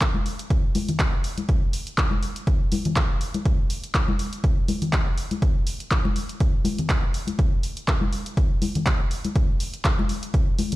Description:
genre	house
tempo	122 BPM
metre	4/4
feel	swing 55% on 16ths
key	none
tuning	none
part	deep house drum kit	drums	0.0-10.8 s	handclaps, hi-hat	-30 LUFS	equal	overdrive
part	electronic kick drum	drums	0.0-10.4 s	none	-22 LUFS	equal	overdrive
part	congas	percussion	0.1-10.8 s	none	-28 LUFS	left 3 dB	none
room	little or no reverb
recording	played on a big sound system in a bare room, stone room reverb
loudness	-21 LUFS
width	side -17 dB against mid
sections	0.0-10.8 A section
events	none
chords	none

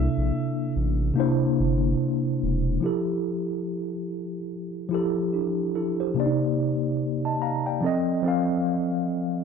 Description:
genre	lo-fi hip hop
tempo	72 BPM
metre	4/4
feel	swing 59% on 16ths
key	F major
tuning	A4 = 442 Hz
part	felt-muted upright piano	melody	0.0-0.7 s	E5	-40 LUFS	left 3 dB	low-pass filter, analog delay
part	mellow tine electric piano	accompaniment	0.0-9.4 s	C3 to Bb5	-24 LUFS	equal	medium stereo tremolo, low-pass filter
part	saturated sub bass	bass	0.0-2.8 s	E1 to Bb1	-25 LUFS	equal	none
room	moderate studio reverb, RT60 0.6 s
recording	none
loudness	-23 LUFS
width	side -6 dB against mid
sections	0.0-2.8 A section; 2.8-9.4 B section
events	none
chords	0.0 C13; 2.8 Fmaj9; 6.2 Cm9; 7.8 F7

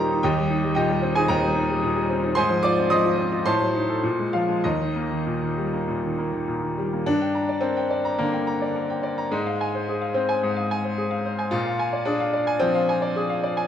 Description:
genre	classical, virtuoso piano study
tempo	95-115 BPM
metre	4/4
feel	rubato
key	unclear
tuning	A4 = 440 Hz
part	bright grand piano	solo	0.0-13.7 s	Eb2 to Eb6	-21 LUFS	equal	none
room	moderate recital hall reverb, RT60 1.7 s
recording	dark, warm production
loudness	-21 LUFS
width	side -9 dB against mid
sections	0.0-7.1 A section; 7.1-13.7 B section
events	none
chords	0.2 Cm7/Eb; 2.4 Fm7/Ab; 3.5 Adim7; 4.0 Bb5; 4.6 Eb; 7.1 Gm; 9.3 Fm/Ab; 11.5 Bb7

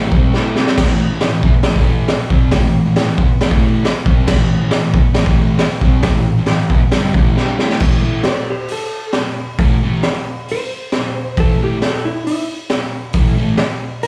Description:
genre	garage rock duo or trio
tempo	136 BPM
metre	4/4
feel	straight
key	A minor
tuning	A4 = 439 Hz
part	fuzz guitar	riff	0.0-13.5 s	G2 to A4	-20 LUFS	equal	distortion
part	raw garage drum kit	drums	0.1-14.1 s	crash cymbal, hi-hat, kick drum, snare drum	-17 LUFS	equal	none
part	clean lap steel guitar	melody	8.3-14.1 s	E4 to D5	-24 LUFS	equal	plate reverb, slapback echo
room	light reverb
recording	live gig heard through the venue's PA, club reverb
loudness	-15 LUFS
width	mono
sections	0.0-7.8 A section; 7.8-14.1 B section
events	drum fill 0.3-0.8, 7.4-7.8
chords	0.0 C5; 0.8 Am; 7.8 A5

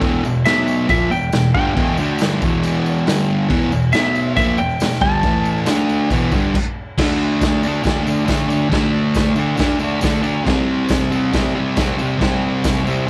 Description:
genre	garage rock duo or trio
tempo	138 BPM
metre	4/4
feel	straight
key	unclear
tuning	A4 = 440 Hz
part	clean lap steel guitar	melody	0.0-5.9 s	A4 to A5	-23 LUFS	equal	none
part	fuzz guitar	riff	0.0-13.1 s	E2 to D4	-19 LUFS	equal	distortion
part	raw garage drum kit	drums	0.0-12.8 s	crash cymbal, kick drum, snare drum	-24 LUFS	equal	none
part	tambourine	percussion	0.0-13.0 s	none	-41 LUFS	equal	none
room	moderate spring reverb, RT60 1.2 s, small room ambience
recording	none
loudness	-18 LUFS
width	mono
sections	0.0-7.0 A section; 7.0-13.1 B section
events	electric slide guitar solo 0.0-7.0; stop 6.5-7.0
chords	0.0 E5; 0.5 B5; 0.9 Em; 3.1 G5; 3.5 E5; 3.9 B5; 4.4 Em; 5.2 A5; 5.7 D5; 6.1 Em; 6.5 N.C.; 7.0 D5; 10.5 C5

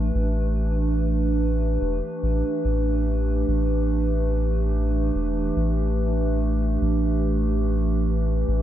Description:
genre	ambient dub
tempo	72 BPM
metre	4/4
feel	swing 55% on 16ths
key	unclear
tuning	A4 = 440 Hz
part	warbly tape-like pad	sustained chords	0.0-8.6 s	E3 to B4	-25 LUFS	right 2 dB	chorus, built-in reverb
part	soft dub sub bass	bass	0.0-8.6 s	E1 to A1	-23 LUFS	equal	none
room	little or no reverb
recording	none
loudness	-21 LUFS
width	side -12 dB against mid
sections	0.0-8.6 A section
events	none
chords	0.0 G69/E

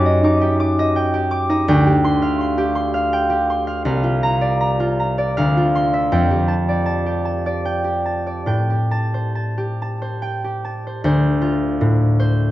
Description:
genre	classical, solo harp piece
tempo	68-84 BPM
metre	3/4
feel	rubato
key	D minor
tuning	A4 = 440 Hz
part	concert harp	solo	0.0-12.5 s	C2 to D6	-16 LUFS	equal	none
room	wet recital hall reverb, RT60 1.8 s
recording	worn, warbling old tape, cassette tape, warbly pitch drift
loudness	-16 LUFS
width	side -15 dB against mid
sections	0.0-11.1 A section; 11.1-12.5 B section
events	none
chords	0.0 Ebmaj7/Gb; 1.7 Dm7; 3.9 C9sus4; 5.4 Dm9; 6.1 F69; 8.5 Am7; 11.1 Dm7

